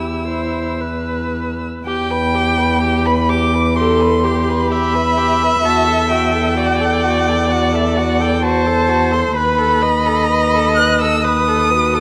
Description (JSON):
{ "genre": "classical, slow romantic movement for string quartet", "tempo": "64 BPM", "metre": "4/4", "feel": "rubato", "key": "E minor", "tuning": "A4 = 439 Hz", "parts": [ { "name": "muted violin", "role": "melody", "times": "0.0-12.0 s", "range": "E5 to F#6", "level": "-21 LUFS", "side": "equal", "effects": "none" }, { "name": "muted violin", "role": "second line", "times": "0.0-12.0 s", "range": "E4 to B4", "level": "-24 LUFS", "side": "equal", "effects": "none" }, { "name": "muted viola", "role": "accompaniment", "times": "0.0-12.0 s", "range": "F#4 to E5", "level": "-21 LUFS", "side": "equal", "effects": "none" }, { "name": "muted cello", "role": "bass", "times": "0.0-12.0 s", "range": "D#2 to E2", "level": "-21 LUFS", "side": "equal", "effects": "none" } ], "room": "moderate concert hall reverb, RT60 2.0 s", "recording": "close, detailed microphones", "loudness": "-16 LUFS", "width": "mono", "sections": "0.0-1.9 A section; 1.9-12.0 A section", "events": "none", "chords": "0.0 Em; 5.6 F#m7b5/E; 9.4 B7/D#", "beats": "0.80 | 1.85 2.81 3.76 4.70 | 5.63 6.57 7.51 8.44 | 9.36 10.29 11.23" }